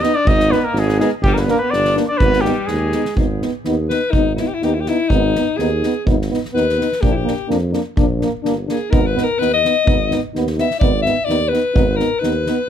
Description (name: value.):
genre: balkan folk, Balkan brass band.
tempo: 125 BPM.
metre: 2/4.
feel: straight.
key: Ab hungarian minor.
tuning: A4 = 441 Hz.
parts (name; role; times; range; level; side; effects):
clear flugelhorn; melody; 0.0-3.2 s; G4 to Eb5; -19 LUFS; right 1 dB; tape echo.
clear alto saxophone; second line; 0.0-12.7 s; G3 to Fb5; -20 LUFS; left 4 dB; none.
mellow French horn; accompaniment; 0.0-12.6 s; D4 to Eb4; -24 LUFS; left 8 dB; none.
warm euphonium; accompaniment; 0.0-12.6 s; Bb3 to Cb4; -23 LUFS; right 6 dB; none.
warm tuba; bass; 0.0-12.5 s; G1 to F2; -21 LUFS; right 1 dB; none.
soft-mallet drum kit; percussion; 0.0-12.5 s; kick drum, snare drum; -21 LUFS; right 1 dB; none.
room: light reverb.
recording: none.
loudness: -15 LUFS.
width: side -9 dB against mid.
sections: 0.0-3.2 A section; 3.2-12.7 B section.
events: speeding up 0.0-12.7; alto saxophone solo 3.2-12.7.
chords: 0.0 Abm; 1.2 Gm; 2.2 Abm; 7.0 Bb; 8.9 Abm.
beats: | 0.27 0.76 | 1.24 1.72 | 2.20 2.69 | 3.17 3.65 | 4.13 4.62 | 5.10 5.58 | 6.06 6.54 | 7.02 7.50 | 7.97 8.45 | 8.93 9.40 | 9.88 10.35 | 10.82 11.30 | 11.77 12.24.